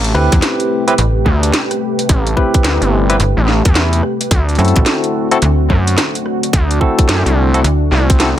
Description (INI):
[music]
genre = glitch hop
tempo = 108 BPM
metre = 4/4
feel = swing 63% on 16ths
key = A dorian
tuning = A4 = 440 Hz
[part]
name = warm analog pad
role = sustained chords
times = 0.0-8.4 s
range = C3 to B4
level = -20 LUFS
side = left 1 dB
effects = chorus, sidechain pumping
[part]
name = gritty driven synth bass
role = bass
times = 0.0-8.3 s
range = G1 to F#2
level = -14 LUFS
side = equal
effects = tube saturation
[part]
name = drum and bass drum kit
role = drums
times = 0.0-8.3 s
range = hi-hat, rim click, snare drum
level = -18 LUFS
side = equal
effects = none
[part]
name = barky tine electric piano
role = stabs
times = 0.1-8.3 s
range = C4 to B4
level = -17 LUFS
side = equal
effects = medium stereo tremolo, vintage 12-bit sampler grit, sidechain pumping, tape echo
[part]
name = slap-like FM bass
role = bass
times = 0.1-7.9 s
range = G1 to F#2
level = -13 LUFS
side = equal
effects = none
[part]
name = electronic kick drum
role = drums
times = 0.3-8.2 s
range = none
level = -12 LUFS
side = equal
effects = none
[sound]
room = light reverb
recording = none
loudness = -11 LUFS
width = side -12 dB against mid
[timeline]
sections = 0.0-8.4 A section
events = none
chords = 0.0 Am9; 4.3 D7